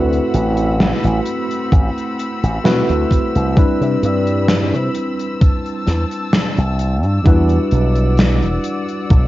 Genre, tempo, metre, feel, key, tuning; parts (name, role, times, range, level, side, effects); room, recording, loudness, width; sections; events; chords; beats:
vaporwave; 65 BPM; 4/4; straight; A4 = 440 Hz
tine electric piano; accompaniment; 0.0-9.3 s; G3 to B4; -19 LUFS; equal; medium stereo tremolo, wide subtle chorus, analog delay
warm chamber string section; sustained chords; 0.0-9.3 s; C4 to E6; -27 LUFS; left 2 dB
slap bass with an envelope filter; bass; 0.0-9.3 s; E1 to C3; -16 LUFS; equal
gated 80s drum kit; drums; 0.1-9.3 s; hi-hat, snare drum; -18 LUFS; equal; vintage 12-bit sampler grit, gated reverb
electronic kick drum; drums; 1.7-9.3 s; -12 LUFS; equal; overdrive, vintage 12-bit sampler grit
light reverb, small room ambience; cassette tape, nothing above 7.6 kHz; -14 LUFS; side -16 dB against mid
0.0-9.3 A section
0.0 D13 (rootless); 3.6 Cmaj7; 7.3 Em9
0.80 1.72 2.65 | 3.57 4.49 5.41 6.34 | 7.26 8.18 9.11